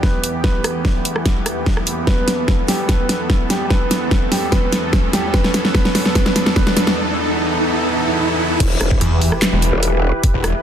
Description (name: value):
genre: heavy wobble dubstep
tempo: 147 BPM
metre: 4/4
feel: half-time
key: E minor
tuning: A4 = 440 Hz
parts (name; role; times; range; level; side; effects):
- warm grand piano; melody; 0.0-7.0 s; G3 to B4; -24 LUFS; right 1 dB; digital delay
- supersaw pad; sustained chords; 0.0-10.6 s; E2 to B4; -23 LUFS; equal; sidechain pumping, low-pass filter
- dubstep drum kit; drums; 0.0-10.5 s; crash cymbal, handclaps, hi-hat, rim click, snare drum; -19 LUFS; equal; soft clipping on snare
- electronic kick drum; drums; 0.0-10.3 s; none; -17 LUFS; equal; none
- riser and impact; sound effects; 0.2-10.2 s; none; -24 LUFS; right 1 dB; none
- growl bass; bass; 8.6-10.1 s; E1; -18 LUFS; equal; chorus, overdrive
- snarling distorted saw bass; bass; 9.0-10.5 s; E1 to E2; -16 LUFS; equal; distortion, overdrive
room: moderate lush hall reverb, RT60 1.8 s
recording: dense, heavily limited modern master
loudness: -14 LUFS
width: side -9 dB against mid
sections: 0.0-8.6 A section; 8.6-10.6 B section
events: build-up 0.0-8.6; drum fill 0.0-7.0; filter sweep on supersaw synth 0.0-8.6; riser 0.2-8.6; break 7.0-8.6; drop 8.6-10.6; impact 8.6-10.2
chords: 0.0 Em